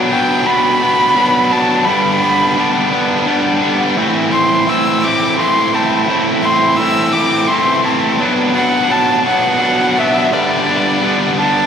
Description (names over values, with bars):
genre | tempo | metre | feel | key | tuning
rock | 57 BPM (dotted quarters) | 6/8 | straight | A dorian | A4 = 440 Hz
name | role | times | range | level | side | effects
sludgy distorted guitar | riff | 0.0-11.7 s | G2 to E4 | -13 LUFS | equal | overdrive
muted violin | melody | 0.1-11.7 s | D5 to E6 | -15 LUFS | equal | analog delay
room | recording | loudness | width
wet lush hall reverb, RT60 1.9 s, small room ambience | dreamy mix soaked in reverb | -11 LUFS | side -7 dB against mid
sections
0.0-11.7 A section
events
none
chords
0.0 Bm; 1.9 G; 4.0 Am; 8.2 Bm; 10.3 G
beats
0.81 | 1.86 2.92 | 3.97 5.03 | 6.08 7.14 | 8.20 9.26 | 10.32 11.38